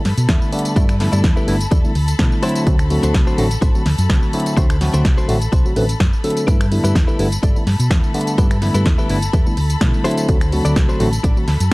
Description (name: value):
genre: filtered disco house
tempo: 126 BPM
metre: 4/4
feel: swing 53% on 16ths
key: G major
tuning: A4 = 440 Hz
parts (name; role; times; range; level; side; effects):
- rich studio violin section; sustained chords; 0.0-11.7 s; A4 to B5; -29 LUFS; left 3 dB; sidechain pumping
- direct-recorded clean electric guitar; riff; 0.0-11.5 s; D4 to D5; -26 LUFS; left 2 dB; sidechain pumping
- hollow-body short-scale fingered electric bass; bass; 0.1-11.7 s; G1 to B2; -18 LUFS; equal; sidechain pumping
- punchy analog drum machine; drums; 0.1-11.7 s; finger snaps, hi-hat, snare drum, tambourine; -25 LUFS; equal; overdrive, sidechain pumping on hats, sidechain pumping on perc, sidechain pumping on cymbals
- bright tine electric piano; accompaniment; 0.3-11.7 s; D3 to B4; -21 LUFS; equal; phaser, vintage 12-bit sampler grit, sidechain pumping
- electronic kick drum; drums; 0.3-11.7 s; none; -16 LUFS; equal; none
room: digital ambience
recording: dry, gritty hardware recording, transformer saturation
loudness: -14 LUFS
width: side -23 dB against mid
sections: 0.0-11.7 A section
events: none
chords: 0.0 G69; 2.4 D7; 6.5 G69; 10.0 D7